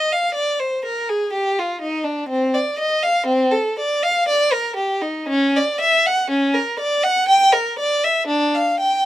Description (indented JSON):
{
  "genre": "classical, baroque-style suite movement for unaccompanied violin",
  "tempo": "60 BPM",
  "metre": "3/4",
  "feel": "rubato",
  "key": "unclear",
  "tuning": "A4 = 441 Hz",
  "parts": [
    { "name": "rich violin", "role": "solo", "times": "0.0-9.0 s", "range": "C4 to G5", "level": "-16 LUFS", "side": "equal", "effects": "none" }
  ],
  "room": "little or no reverb",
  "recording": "close, detailed microphones",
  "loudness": "-16 LUFS",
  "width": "side -14 dB against mid",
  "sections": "0.0-9.1 A section",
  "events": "none",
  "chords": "none",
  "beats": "0.36 1.33 | 2.30 3.29 4.28 | 5.29 6.30 7.29 | 8.29"
}